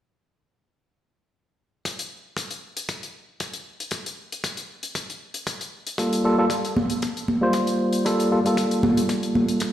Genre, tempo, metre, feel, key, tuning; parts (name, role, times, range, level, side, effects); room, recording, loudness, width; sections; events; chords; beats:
nu-disco, nu disco; 116 BPM; 4/4; swing 54% on 16ths; G minor; A4 = 440 Hz
hi-hat; drums; 1.9-9.7 s; -32 LUFS; left 4 dB; studio reverb
kick drum; drums; 1.9-9.7 s; -32 LUFS; equal; high-pass filter on kick, studio reverb, high-pass filter on snare, high-pass filter on room
tine electric piano; accompaniment; 6.0-9.7 s; G3 to C5; -21 LUFS; equal; sidechain pumping, dub echo
congas; percussion; 6.8-9.5 s; -23 LUFS; right 1 dB
moderate echo chamber reverb, RT60 1.8 s, small room ambience; played on a big sound system in a bare room, stone room reverb; -22 LUFS; side -11 dB against mid
1.9-9.7 A section
1.9 Gm9
| 1.85 2.37 2.88 3.40 | 3.92 4.44 4.95 5.47 | 5.99 6.51 7.02 7.54 | 8.06 8.57 9.09 9.61